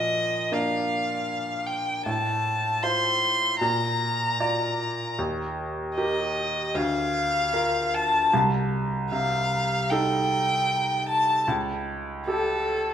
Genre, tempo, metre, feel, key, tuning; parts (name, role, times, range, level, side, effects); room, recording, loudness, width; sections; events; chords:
classical, romantic duo for violin and grand piano; 76 BPM; 4/4; rubato; A4 = 440 Hz
rich violin; melody; 0.0-12.9 s; A4 to C6; -24 LUFS; left 1 dB
bright baby grand piano; accompaniment; 0.0-12.9 s; C2 to D5; -28 LUFS; right 1 dB
moderate recital hall reverb, RT60 1.6 s; minimal, uncompressed stereo recording; -23 LUFS; side -9 dB against mid
0.0-12.9 A section
0.0 Bb; 2.1 F/A; 3.6 Bb; 5.2 Eb; 6.7 Bb/D; 8.3 Adim/C; 11.5 A7/C#